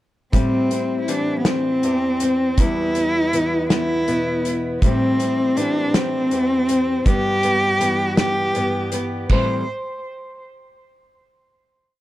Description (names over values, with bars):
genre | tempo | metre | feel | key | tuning
indie folk with a building arrangement | 54 BPM (dotted quarters) | 6/8 | straight | A minor | A4 = 440 Hz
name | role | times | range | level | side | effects
warm cello | melody | 0.3-9.6 s | B3 to C5 | -20 LUFS | equal | tape echo
fingerpicked steel-string acoustic guitar | accompaniment | 0.3-9.7 s | E2 to G4 | -23 LUFS | left 2 dB | none
loose indie drum kit | drums | 0.3-9.5 s | china cymbal, hi-hat, kick drum, snare drum | -21 LUFS | equal | none
room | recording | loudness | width
little or no reverb | none | -17 LUFS | side -15 dB against mid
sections
0.3-9.3 verse; 9.3-11.5 final chord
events
none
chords
0.3 Am7; 2.6 Em; 4.8 Am7; 7.1 Em/G; 9.3 Am7